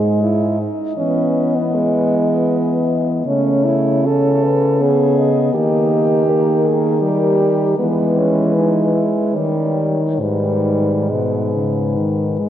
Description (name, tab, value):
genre	classical, lyrical piece for horn quartet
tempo	67-82 BPM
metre	3/4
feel	rubato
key	G# minor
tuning	A4 = 442 Hz
part	warm French horn	melody	0.0-12.4 s	A#4 to D#5	-22 LUFS	left 6 dB	none
part	warm French horn	second line	0.0-12.0 s	G3 to A4	-19 LUFS	right 5 dB	none
part	warm French horn	accompaniment	0.0-12.5 s	B2 to C#4	-20 LUFS	left 2 dB	none
part	mellow French horn	bass	0.0-12.5 s	G#2 to E3	-19 LUFS	equal	none
room	moderate cathedral reverb, RT60 6.8 s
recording	worn, warbling old tape, cassette tape, warbly pitch drift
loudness	-14 LUFS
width	side -11 dB against mid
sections	0.0-12.5 A section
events	none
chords	0.0 G#5; 1.0 Emaj7; 3.3 A/C#; 5.5 D#; 7.8 E; 9.3 D#7; 10.2 G#m